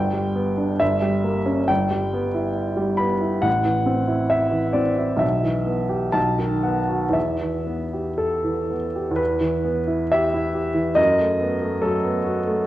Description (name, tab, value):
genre	classical, romantic character piece for solo piano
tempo	57-72 BPM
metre	2/4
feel	rubato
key	E minor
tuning	A4 = 438 Hz
part	clear upright piano	solo	0.0-12.7 s	G1 to B5	-19 LUFS	equal	none
room	moderate recital hall reverb, RT60 1.3 s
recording	worn, warbling old tape, cassette tape, warbly pitch drift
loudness	-19 LUFS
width	side -14 dB against mid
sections	0.0-9.2 A section; 9.2-12.7 B section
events	none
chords	0.0 G; 0.8 Gdim7; 1.7 Em/G; 3.5 Am; 5.2 Em/B; 6.2 B7; 7.2 Em; 11.0 B7/F#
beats	0.81 | 1.70 2.58 | 3.46 4.33 | 5.23 6.16 | 7.16 8.19 | 9.20 10.12 | 10.98 11.83